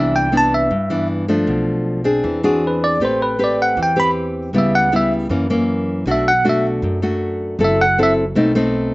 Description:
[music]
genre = bossa nova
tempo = 157 BPM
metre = 4/4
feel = straight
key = unclear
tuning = A4 = 441 Hz
[part]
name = bell-like tine electric piano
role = melody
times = 0.0-8.1 s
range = F#4 to B5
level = -17 LUFS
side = equal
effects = slapback echo
[part]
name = nylon-string guitar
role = accompaniment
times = 0.0-8.9 s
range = F#2 to B4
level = -17 LUFS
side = left 1 dB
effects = none
[part]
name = upright bass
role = bass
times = 0.0-8.9 s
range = F#1 to G2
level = -25 LUFS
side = right 1 dB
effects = none
[sound]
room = little or no reverb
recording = recorded outdoors, with no room sound, nothing above 8.0 kHz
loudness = -15 LUFS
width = side -20 dB against mid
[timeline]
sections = 0.0-8.9 A section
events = tine electric piano solo 0.0-8.9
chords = 0.0 Cmaj9; 1.5 Bm7b5; 2.2 E7b13; 3.0 Am9; 4.5 C#m7b5; 5.3 F#7; 6.1 Bm7; 7.6 F#m7b5; 8.4 B7b9

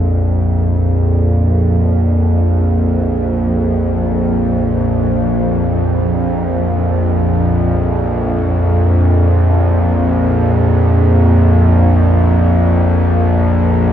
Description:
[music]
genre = dark ambient drone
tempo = free time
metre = none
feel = none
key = unclear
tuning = A4 = 439 Hz
[part]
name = bowed-like drone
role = drone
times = 0.0-13.9 s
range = Bb1 to F2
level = -11 LUFS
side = equal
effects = built-in reverb
[part]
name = quartz singing bowl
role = texture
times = 0.0-13.9 s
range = C4 to F4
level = -27 LUFS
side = left 4 dB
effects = none
[sound]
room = wet cathedral reverb, RT60 7.1 s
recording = in a vast, echoing space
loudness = -11 LUFS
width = side -10 dB against mid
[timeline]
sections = 0.0-13.9 A section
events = none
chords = 0.0 Bbsus2

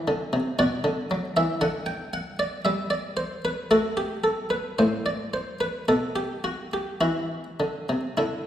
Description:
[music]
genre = classical, baroque-style suite movement for harpsichord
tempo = 51-58 BPM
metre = 3/4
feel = rubato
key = unclear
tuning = A4 = 439 Hz
[part]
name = buff-stop harpsichord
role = solo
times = 0.0-8.5 s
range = A2 to G5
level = -24 LUFS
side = equal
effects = none
[sound]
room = wet recital hall reverb, RT60 1.8 s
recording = heard from further back in the room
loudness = -24 LUFS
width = side -10 dB against mid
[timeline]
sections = 0.0-8.5 A section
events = none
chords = 0.0 Csus2; 0.6 Bm (rootless); 2.7 N.C.; 3.7 Am13; 5.9 N.C.

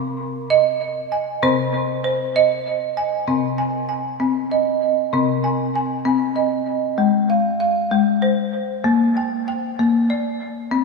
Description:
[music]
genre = world meditative, meditative tuned percussion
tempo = 65 BPM (dotted quarters)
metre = 6/8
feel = straight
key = C minor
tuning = A4 = 440 Hz
[part]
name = folk marimba with medium hard mallets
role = solo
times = 0.0-10.8 s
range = C3 to Ab5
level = -18 LUFS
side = equal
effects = diffuse ambient delay
[sound]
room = wet lush hall reverb, RT60 2.9 s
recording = dreamy mix soaked in reverb, small room ambience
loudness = -18 LUFS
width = side -3 dB against mid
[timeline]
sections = 0.0-3.3 A section; 3.3-10.8 B section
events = none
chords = 0.0 Cm; 7.0 Ab; 8.9 Bb

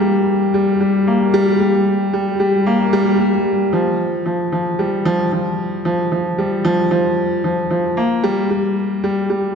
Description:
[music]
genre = electronica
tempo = 113 BPM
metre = 4/4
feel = straight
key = unclear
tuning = A4 = 440 Hz
[part]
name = clear upright piano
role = solo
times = 0.0-9.6 s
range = F3 to Bb3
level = -15 LUFS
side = equal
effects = none
[sound]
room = wet concert hall reverb, RT60 1.8 s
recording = none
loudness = -15 LUFS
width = side -6 dB against mid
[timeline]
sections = 0.0-3.7 A section; 3.7-9.6 B section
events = build-up 0.0-3.7; drop 3.7-9.6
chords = none

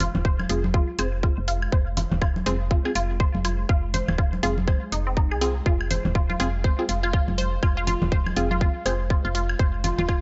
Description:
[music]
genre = minimal techno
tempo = 122 BPM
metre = 4/4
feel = swing 59% on 16ths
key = F minor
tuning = A4 = 439 Hz
[part]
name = resonant blip pluck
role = riff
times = 0.0-10.1 s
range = C4 to C5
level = -32 LUFS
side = equal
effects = phaser, sidechain pumping, analog delay
[part]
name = woody FM bass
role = bass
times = 0.0-10.2 s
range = Eb1 to C2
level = -29 LUFS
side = equal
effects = sidechain pumping
[part]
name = electronic hi-hat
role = drums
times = 0.0-10.0 s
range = none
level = -33 LUFS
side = equal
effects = none
[part]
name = congas and woodblock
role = percussion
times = 0.0-10.2 s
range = none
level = -33 LUFS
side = equal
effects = tape echo
[part]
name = swarming drone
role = texture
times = 0.0-10.2 s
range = Ab3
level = -44 LUFS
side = equal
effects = none
[part]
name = electronic kick drum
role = drums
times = 0.2-10.2 s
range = none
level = -24 LUFS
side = equal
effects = none
[part]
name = wavetable chord stab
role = stabs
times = 0.5-8.9 s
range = C4 to Ab4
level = -33 LUFS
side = equal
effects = cassette tape, tape echo
[sound]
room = digital ambience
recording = dry, gritty hardware recording, nothing above 7.8 kHz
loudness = -24 LUFS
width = mono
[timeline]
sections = 0.0-10.2 A section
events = none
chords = 0.0 Fm

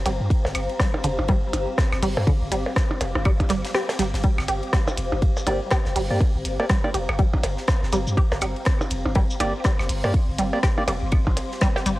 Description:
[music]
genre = minimal techno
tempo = 122 BPM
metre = 4/4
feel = swing 59% on 16ths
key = G minor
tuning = A4 = 438 Hz
[part]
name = punchy sub bass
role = bass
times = 0.0-12.0 s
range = F1 to G2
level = -27 LUFS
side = equal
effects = sidechain pumping
[part]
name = granular cloud pad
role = texture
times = 0.0-12.0 s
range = G4 to D6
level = -32 LUFS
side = left 2 dB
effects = built-in reverb, sidechain pumping, cassette tape
[part]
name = swarming drone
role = texture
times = 0.0-12.0 s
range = C4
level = -38 LUFS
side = equal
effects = built-in reverb, sidechain pumping, cassette tape
[part]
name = resonant blip pluck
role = riff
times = 0.1-11.9 s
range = D3 to G4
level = -27 LUFS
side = right 1 dB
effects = phaser, sidechain pumping, cassette tape, tape echo
[part]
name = minimal click drum kit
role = drums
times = 0.1-12.0 s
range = hi-hat, rim click, shaker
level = -28 LUFS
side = equal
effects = none
[part]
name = tight funk drum kit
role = drums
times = 0.1-12.0 s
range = hi-hat, ride cymbal, snare drum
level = -38 LUFS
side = left 1 dB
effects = sidechain pumping on cymbals, high-pass filter on cymbals, sidechain pumping on hats, high-pass filter on hats, high-pass filter on snare, high-pass filter on room
[part]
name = percussion blips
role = percussion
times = 0.1-11.8 s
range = none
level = -29 LUFS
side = right 1 dB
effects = none
[part]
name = electronic kick drum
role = drums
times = 0.3-11.7 s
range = none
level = -21 LUFS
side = equal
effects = none
[part]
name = percussive organ stab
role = stabs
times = 5.5-10.8 s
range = Bb3 to D5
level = -28 LUFS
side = right 1 dB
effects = chorus, cassette tape, analog delay
[sound]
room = digital ambience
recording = home recording on cassette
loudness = -20 LUFS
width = side -18 dB against mid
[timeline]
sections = 0.0-12.0 A section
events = filter sweep on synth arpeggio sound 0.0-12.0; kick drops out 3.7-4.2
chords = 0.0 Gm

